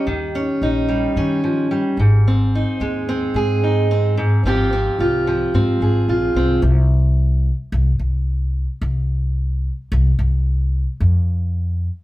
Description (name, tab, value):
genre	indie folk with a building arrangement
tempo	110 BPM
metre	4/4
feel	straight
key	unclear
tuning	A4 = 440 Hz
part	fingerpicked steel-string acoustic guitar	accompaniment	0.0-6.6 s	Ab2 to Ab4	-18 LUFS	right 1 dB	none
part	upright bass	bass	0.1-11.9 s	Ab1 to Eb3	-18 LUFS	equal	none
room	moderate stone room reverb, RT60 0.9 s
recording	band playing live in one room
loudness	-16 LUFS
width	side -16 dB against mid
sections	0.0-6.6 A section; 6.6-12.0 B section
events	none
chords	0.0 Eb7; 2.0 Ab; 4.4 Fmadd9/Ab; 6.6 N.C.